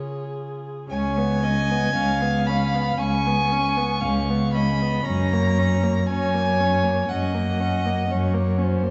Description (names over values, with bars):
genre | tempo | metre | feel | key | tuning
classical, slow romantic movement for string quartet | 58 BPM | 4/4 | rubato | Db major | A4 = 440 Hz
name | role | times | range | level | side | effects
rich violin | melody | 0.0-8.6 s | Db5 to Db6 | -30 LUFS | equal | none
dark violin | second line | 0.0-8.9 s | F4 to Ab5 | -30 LUFS | equal | none
warm viola | accompaniment | 0.0-8.9 s | Bb3 to Ab4 | -31 LUFS | equal | none
warm cello | bass | 0.0-8.9 s | Db2 to Db3 | -25 LUFS | equal | none
room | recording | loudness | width
wet concert hall reverb, RT60 1.9 s | recorded in a church or concert hall, nothing above 7.7 kHz | -22 LUFS | mono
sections
0.9-8.9 A section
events
none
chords
0.0 Db; 0.9 Db7; 5.1 Gb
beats
| 0.90 1.95 2.98 4.02 | 5.06 6.08 7.09 8.11